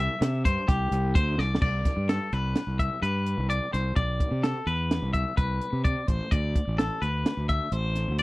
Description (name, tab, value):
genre	math rock and midwest emo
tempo	128 BPM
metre	5/4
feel	straight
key	C major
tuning	A4 = 440 Hz
part	twangy electric guitar	arpeggios	0.0-8.2 s	G4 to E5	-30 LUFS	left 2 dB	none
part	fuzz fingered electric bass	bass	0.0-8.2 s	A1 to C3	-28 LUFS	equal	overdrive
part	compact cocktail drum kit	drums	0.2-8.2 s	crash cymbal, hi-hat, kick drum, snare drum	-26 LUFS	equal	none
room	little or no reverb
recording	dry, close 1970s-style studio recording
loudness	-24 LUFS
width	side -20 dB against mid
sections	0.0-1.6 A section; 1.6-8.2 B section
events	drum fill 1.4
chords	0.0 Cadd9; 1.6 Cmaj9; 6.3 D7sus2